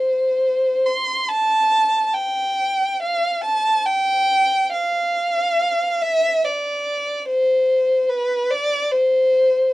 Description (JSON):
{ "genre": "classical, free, expressive piece for unaccompanied violin", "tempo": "44-50 BPM (dotted quarters)", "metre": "6/8", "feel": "rubato", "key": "unclear", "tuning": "A4 = 437 Hz", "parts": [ { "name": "warm violin", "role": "solo", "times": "0.0-9.7 s", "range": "B4 to C6", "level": "-17 LUFS", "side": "equal", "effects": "none" } ], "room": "little or no reverb", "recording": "dark, warm production", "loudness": "-17 LUFS", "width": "side -17 dB against mid", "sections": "0.0-9.7 A section", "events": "none", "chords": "none" }